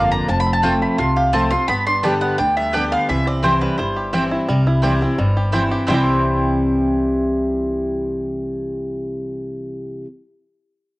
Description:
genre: bluegrass.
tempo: 172 BPM.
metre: 4/4.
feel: straight.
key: C major.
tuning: A4 = 445 Hz.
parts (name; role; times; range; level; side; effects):
mandolin; melody; 0.0-10.0 s; B4 to C6; -20 LUFS; equal; none.
picked steel-string acoustic guitar; accompaniment; 0.0-10.1 s; F2 to G4; -20 LUFS; left 1 dB; cassette tape.
bluegrass banjo; arpeggios; 0.0-10.1 s; E3 to G4; -26 LUFS; right 1 dB; cassette tape.
mandolin; stabs; 0.0-10.1 s; B3 to A5; -24 LUFS; right 1 dB; cassette tape.
upright bass; bass; 0.0-10.0 s; F1 to D2; -24 LUFS; equal; none.
room: moderate spring reverb, RT60 1.5 s, small room reverb.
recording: home recording on cassette.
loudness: -16 LUFS.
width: side -21 dB against mid.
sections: 0.0-4.5 A section; 4.5-5.9 B section; 5.9-8.7 C section.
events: none.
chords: 0.3 F; 1.7 G; 3.1 C.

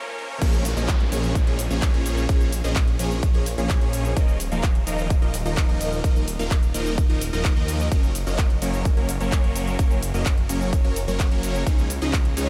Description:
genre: EDM, festival progressive house.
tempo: 128 BPM.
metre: 4/4.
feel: straight.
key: Bb minor.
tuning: A4 = 435 Hz.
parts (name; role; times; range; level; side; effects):
supersaw chords; riff; 0.0-12.5 s; F3 to F5; -30 LUFS; equal; phaser, sidechain pumping, diffuse ambient delay.
riser and downlifter; sound effects; 0.0-4.2 s; none; -38 LUFS; equal; none.
detuned saw bass; bass; 0.4-12.5 s; Eb1 to Eb2; -29 LUFS; equal; sidechain pumping.
big-room dance drum kit; drums; 0.4-12.5 s; crash cymbal, handclaps, hi-hat, ride cymbal, shaker; -35 LUFS; equal; none.
electronic kick drum; drums; 0.4-12.2 s; none; -22 LUFS; equal; none.
room: light reverb, digital ambience.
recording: high-pass filter.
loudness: -22 LUFS.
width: mono.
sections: 0.4-12.5 A section.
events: break 0.0-0.4; drop 0.4-12.5.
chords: 0.4 Bbm7; 4.2 Ebsus2; 7.9 Gb; 11.7 Dbadd9.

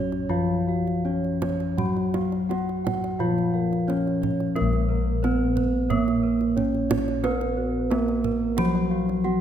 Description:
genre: Javanese gamelan.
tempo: 79-90 BPM.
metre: 4/4.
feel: straight.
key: Bb pelog.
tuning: A4 = 440 Hz.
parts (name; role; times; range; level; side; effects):
gamelan-type bronze metallophone; melody; 0.0-9.4 s; Gb3 to Gb4; -27 LUFS; right 2 dB; none.
gamelan-type bronze metallophone; accompaniment; 0.0-9.4 s; F3 to Cb4+35c; -27 LUFS; left 2 dB; none.
gamelan-type bronze metallophone; arpeggios; 0.0-9.4 s; Gb4 to Gb5; -33 LUFS; right 11 dB; none.
gamelan-type bossed gongs; bass; 0.0-9.4 s; Bb1 to Cb5+35c; -28 LUFS; left 2 dB; none.
kendang; percussion; 0.1-9.2 s; none; -32 LUFS; right 4 dB; none.
gamelan-type bossed gongs; arpeggios; 0.3-9.4 s; Gb4 to Gb5; -36 LUFS; left 2 dB; none.
room: moderate concert hall reverb, RT60 2.0 s.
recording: minimal, uncompressed stereo recording.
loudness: -22 LUFS.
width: side -9 dB against mid.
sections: 0.0-4.6 A section; 4.6-9.4 B section.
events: none.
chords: none.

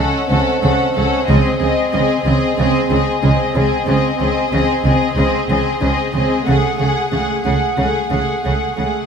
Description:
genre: cinematic, suspense film score.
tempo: 92 BPM.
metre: 4/4.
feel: straight.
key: unclear.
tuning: A4 = 438 Hz.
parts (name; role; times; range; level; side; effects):
warm studio violin section; melody; 0.0-9.1 s; D#5 to F#5; -23 LUFS; left 2 dB; none.
clear studio violin section; second line; 0.0-9.1 s; G#4 to A4; -21 LUFS; left 4 dB; none.
dark studio viola section; accompaniment; 0.0-9.1 s; A3 to C#4; -21 LUFS; right 1 dB; none.
dark studio double bass section; bass; 0.0-8.9 s; C#2; -20 LUFS; right 1 dB; none.
warm studio cello section; bass; 0.0-8.9 s; C#3; -20 LUFS; right 2 dB; none.
vibraphone with soft mallets; texture; 0.0-9.1 s; B#3 to F#5; -24 LUFS; right 1 dB; none.
room: moderate scoring stage reverb, RT60 1.8 s.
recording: none.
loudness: -14 LUFS.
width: side -6 dB against mid.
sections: 0.0-9.1 A section.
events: none.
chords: 0.0 A6/C#; 1.3 G#/C#; 6.5 F#madd9/C#.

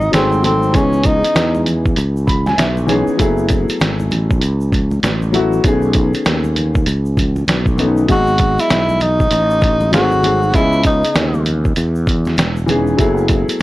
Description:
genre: hip hop, jazz-hop.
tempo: 98 BPM.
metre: 4/4.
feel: swing 62% on 16ths.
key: F# dorian.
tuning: A4 = 440 Hz.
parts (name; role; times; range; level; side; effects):
breathy tenor saxophone; melody; 0.0-1.7, 8.1-11.4 s; B#3 to F#4; -16 LUFS; equal; none.
sustaining fretless electric bass; bass; 0.0-13.5 s; E1 to E2; -17 LUFS; equal; none.
congas and egg shaker; percussion; 0.0-13.6 s; none; -29 LUFS; right 1 dB; none.
dark grand piano; accompaniment; 0.1-13.6 s; C#3 to B5; -18 LUFS; left 2 dB; none.
lo-fi sampler-style drum kit; drums; 0.1-13.6 s; hi-hat, kick drum, snare drum; -17 LUFS; equal; none.
room: small room ambience.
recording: dry, gritty hardware recording, transformer saturation, cassette tape.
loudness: -12 LUFS.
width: side -17 dB against mid.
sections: 0.0-13.6 A section.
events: grand piano fill 2.0-3.2.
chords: 0.1 G#7b9; 0.7 C#m9; 3.2 F#m11; 5.6 B13; 8.1 G#m7; 9.9 G#7b9; 10.5 C#m9; 13.0 F#m11.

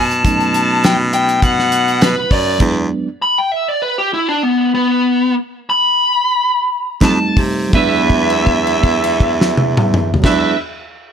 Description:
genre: straight-eighth soul blues.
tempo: 82-102 BPM.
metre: 4/4.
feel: swing 54% on 16ths.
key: E mixolydian.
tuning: A4 = 440 Hz.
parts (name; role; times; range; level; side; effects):
smooth overdriven lead guitar; melody; 0.0-10.6 s; B3 to B5; -15 LUFS; equal; none.
reed electric piano; accompaniment; 0.0-3.1, 7.0-10.6 s; F#3 to D#4; -20 LUFS; right 4 dB; none.
bright baritone saxophone; bass; 0.0-2.9, 7.0-10.5 s; E2 to C3; -18 LUFS; equal; none.
warm soul drum kit; drums; 0.1-2.7, 7.0-10.4 s; crash cymbal, hi-hat, kick drum, snare drum, toms; -16 LUFS; equal; none.
electric guitar at the edge of break-up; second line; 7.8-10.6 s; B4; -23 LUFS; right 6 dB; none.
room: light reverb.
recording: none.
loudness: -12 LUFS.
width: side -8 dB against mid.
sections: 0.0-7.7 A section; 7.7-10.7 B section.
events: slowing down 2.6-7.7; stop 2.6-7.0; held note 7.7-10.2.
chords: 0.0 B7; 2.6 E7; 7.0 F9; 7.7 E7.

